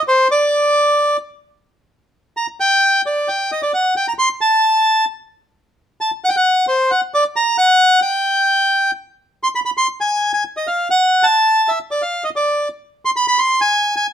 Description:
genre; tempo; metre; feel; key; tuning
tango; 132 BPM; 4/4; rubato; G harmonic minor; A4 = 440 Hz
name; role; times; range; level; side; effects
bandoneon; solo; 0.0-14.1 s; C5 to C6; -14 LUFS; equal; none
room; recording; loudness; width
moderate studio reverb, RT60 0.7 s; band playing live in one room; -14 LUFS; side -9 dB against mid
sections
0.0-9.2 A section; 9.2-14.1 B section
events
none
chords
none

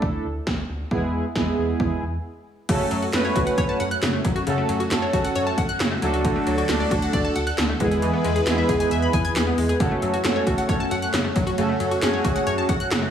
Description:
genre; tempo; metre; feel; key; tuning
synth-pop; 135 BPM; 4/4; straight; F# minor; A4 = 440 Hz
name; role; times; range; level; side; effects
analog synth brass; accompaniment; 0.0-12.7 s; G#3 to B4; -25 LUFS; right 1 dB; chorus
round analog bass; bass; 0.0-13.1 s; C#2 to F#2; -29 LUFS; equal; none
80s electronic pad drums; drums; 0.0-13.0 s; crash cymbal, handclaps, hi-hat, kick drum, snare drum; -26 LUFS; equal; none
phased analog pad; sustained chords; 2.7-13.1 s; D3 to B4; -28 LUFS; equal; phaser, chorus
analog pluck; arpeggios; 2.7-13.1 s; C#3 to G#6; -26 LUFS; left 2 dB; chorus, tape echo
room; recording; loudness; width
moderate recital hall reverb, RT60 1.8 s; studio reverb; -20 LUFS; side -9 dB against mid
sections
0.0-2.7 A section; 2.7-13.1 B section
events
break 2.2-2.7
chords
0.0 Dsus2; 0.9 E; 2.7 F#m; 6.0 D; 7.8 E; 9.8 F#m

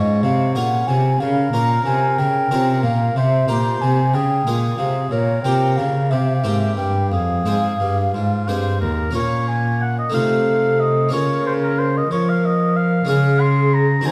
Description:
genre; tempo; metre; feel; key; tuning
classical, baroque-style sonata movement with continuo; 61 BPM (dotted quarters); 6/8; straight; F minor, Bb minor from 9.2 s; A4 = 440 Hz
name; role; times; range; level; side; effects
warm oboe; melody; 0.0-14.1 s; F4 to C6; -27 LUFS; equal; none
mellow baroque flute; second line; 0.0-14.1 s; Ab4 to Bb5; -24 LUFS; equal; none
harpsichord; accompaniment; 0.0-14.1 s; Eb2 to C5; -26 LUFS; equal; none
warm cello; bass; 0.0-14.1 s; Eb2 to F3; -22 LUFS; equal; none
room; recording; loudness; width
moderate recital hall reverb, RT60 1.6 s; dark, warm production; -18 LUFS; mono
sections
0.0-9.2 A section; 9.2-14.1 A section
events
none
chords
0.0 Db; 1.2 Bbm; 3.2 C5; 4.1 Db; 5.1 Gm7b5/Bb; 6.1 C5; 7.1 Fm; 9.2 Bbm; 10.1 F7/C; 11.1 Bbm/Db; 13.1 Db5

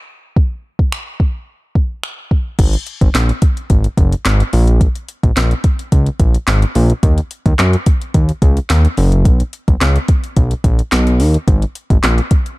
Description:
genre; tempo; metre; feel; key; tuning
dance-pop; 108 BPM; 4/4; straight; unclear; A4 = 440 Hz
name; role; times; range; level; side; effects
smooth R&B drum kit; drums; 0.4-12.6 s; crash cymbal, finger snaps, handclaps, hi-hat, kick drum, snare drum; -14 LUFS; equal; none
fat analog bass; bass; 2.6-12.2 s; Gb1 to Gb2; -12 LUFS; equal; sidechain pumping
room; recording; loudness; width
little or no reverb; dark, warm production; -12 LUFS; side -21 dB against mid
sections
0.0-2.6 A section; 2.6-12.6 B section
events
drop 2.6-12.6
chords
none

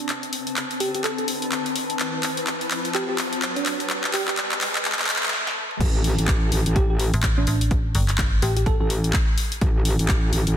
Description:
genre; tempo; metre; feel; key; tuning
bass house; 126 BPM; 4/4; swing 60% on 16ths; A minor; A4 = 438 Hz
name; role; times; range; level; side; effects
bell-like FM electric piano; melody; 0.0-8.9 s; D4 to A4; -30 LUFS; right 2 dB; chorus, tremolo, ping-pong delay
riser; sound effects; 0.0-5.3 s; none; -33 LUFS; equal; none
granular cloud pad; texture; 0.0-5.3 s; C4 to A5; -31 LUFS; left 3 dB; built-in reverb, sidechain pumping
house drum kit; drums; 0.1-10.5 s; crash cymbal, handclaps, hi-hat, snare drum, toms; -25 LUFS; left 1 dB; high-pass filter on hats, soft clipping on snare, high-pass filter on snare, high-pass filter on toms, high-pass filter on cymbals
metallic wobble bass; bass; 5.8-10.6 s; A1; -22 LUFS; equal; chorus, overdrive, sidechain pumping
electronic kick drum; drums; 5.8-10.2 s; none; -22 LUFS; equal; none
metallic FM bass; bass; 7.1-8.8 s; G1 to A1; -22 LUFS; equal; sidechain pumping
room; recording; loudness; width
light reverb; dense, heavily limited modern master, high-pass filter; -20 LUFS; side -10 dB against mid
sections
0.0-5.8 A section; 5.8-10.6 B section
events
build-up 0.0-5.8; drum fill 0.0-5.3, 5.3-5.8; riser 0.0-5.3; stop 5.3-5.8; drop 5.8-10.6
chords
0.0 Amadd9; 5.8 N.C.

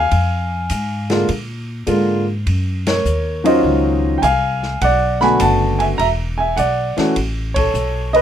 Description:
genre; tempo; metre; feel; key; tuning
jazz piano trio; 102 BPM; 4/4; swing 68% on 8ths; unclear; A4 = 440 Hz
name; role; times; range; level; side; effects
warm upright piano; melody; 0.0-8.2 s; D3 to Cb6; -16 LUFS; equal; none
upright bass; bass; 0.0-8.2 s; E1 to Bb2; -20 LUFS; equal; none
open jazz drum kit; drums; 0.1-8.2 s; hi-hat, kick drum, ride cymbal, snare drum; -28 LUFS; left 1 dB; none
room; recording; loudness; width
light reverb; minimal, uncompressed stereo recording; -15 LUFS; side -9 dB against mid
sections
0.0-8.2 A section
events
band accent 2.8, 7.4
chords
0.1 Fm; 1.3 Bb7; 2.5 Ebm9; 4.8 Cbm7; 6.0 E5; 7.2 A

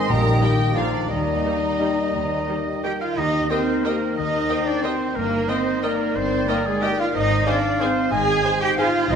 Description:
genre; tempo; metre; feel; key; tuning
classical; 164-199 BPM; 3/4; rubato; Eb major; A4 = 436 Hz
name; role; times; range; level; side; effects
warm symphonic violin section; melody; 0.0-8.9 s; D5 to Bb5; -32 LUFS; left 2 dB; none
flute section; second line; 0.0-9.2 s; Ab4 to Bb5; -30 LUFS; equal; none
mellow clarinet; second line; 0.0-9.2 s; Bb3 to F5; -30 LUFS; left 1 dB; none
warm oboe; second line; 0.0-9.2 s; Ab4 to Ab5; -28 LUFS; right 2 dB; none
warm symphonic violin section; second line; 0.0-9.2 s; D4 to Ab5; -30 LUFS; left 2 dB; none
mellow bassoon; accompaniment; 0.0-3.0 s; Eb3 to G3; -28 LUFS; left 1 dB; none
mellow French horn section; sustained chords; 0.0-8.9 s; Eb3 to G4; -32 LUFS; left 2 dB; none
concert harp; arpeggios; 0.0-9.2 s; G2 to C5; -27 LUFS; left 5 dB; none
rich chamber cello section; bass; 0.1-9.2 s; Eb2 to Ab4; -25 LUFS; right 4 dB; none
rich symphonic double bass section; bass; 0.1-9.2 s; G1 to Eb2; -28 LUFS; right 2 dB; none
timpani; percussion; 0.1-0.6, 9.1-9.2 s; Bb2 to C3; -27 LUFS; equal; none
rich symphonic viola section; accompaniment; 0.4-8.9 s; D3 to Eb5; -31 LUFS; right 1 dB; none
room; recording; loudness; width
wet recital hall reverb, RT60 1.5 s; minimal, uncompressed stereo recording; -19 LUFS; side -7 dB against mid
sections
0.0-3.2 A section; 3.2-9.2 B section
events
none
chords
0.1 Eb/Bb; 0.8 Bb; 1.1 Eb; 5.2 Eb/G; 7.1 Ab

